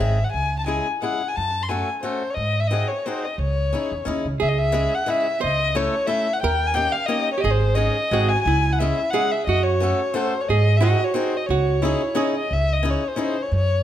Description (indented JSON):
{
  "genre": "musette waltz",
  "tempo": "178 BPM",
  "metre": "3/4",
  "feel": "swing 55% on 8ths",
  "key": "C# harmonic minor",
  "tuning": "A4 = 442 Hz",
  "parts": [
    { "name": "dark violin", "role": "melody", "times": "0.0-13.8 s", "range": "B#4 to B#5", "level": "-23 LUFS", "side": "left 3 dB", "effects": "none" },
    { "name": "picked swing-style acoustic guitar", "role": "accompaniment", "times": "0.0-13.4 s", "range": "G#3 to A4", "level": "-27 LUFS", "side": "left 2 dB", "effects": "none" },
    { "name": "upright bass", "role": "bass", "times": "0.0-13.8 s", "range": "G#1 to G#2", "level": "-22 LUFS", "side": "right 1 dB", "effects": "none" },
    { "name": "archtop guitar, miked and amplified", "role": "second line", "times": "4.4-12.5 s", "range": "E4 to B#4", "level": "-25 LUFS", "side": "right 7 dB", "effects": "none" }
  ],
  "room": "moderate recital hall reverb, RT60 1.5 s",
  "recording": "none",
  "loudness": "-19 LUFS",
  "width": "side -11 dB against mid",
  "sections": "0.0-4.4 A section; 4.4-12.5 A section; 12.5-13.8 B section",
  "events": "none",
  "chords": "0.0 G#; 0.3 C#m; 1.4 F#m; 2.4 G#7; 3.4 C#madd9; 4.4 C#m; 5.4 A/C#; 6.4 D#7; 7.4 G#sus4; 8.1 G#; 8.5 C#m; 9.5 F#m; 10.5 G#7; 11.5 C#madd9",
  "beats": "| 0.34 0.68 1.02 | 1.36 1.70 2.04 | 2.38 2.71 3.05 | 3.39 3.73 4.07 | 4.41 4.75 5.08 | 5.42 5.76 6.09 | 6.43 6.76 7.10 | 7.44 7.78 8.12 | 8.46 8.80 9.13 | 9.47 9.81 10.15 | 10.48 10.82 11.15 | 11.49 11.82 12.16 | 12.50 12.84 13.18 | 13.51"
}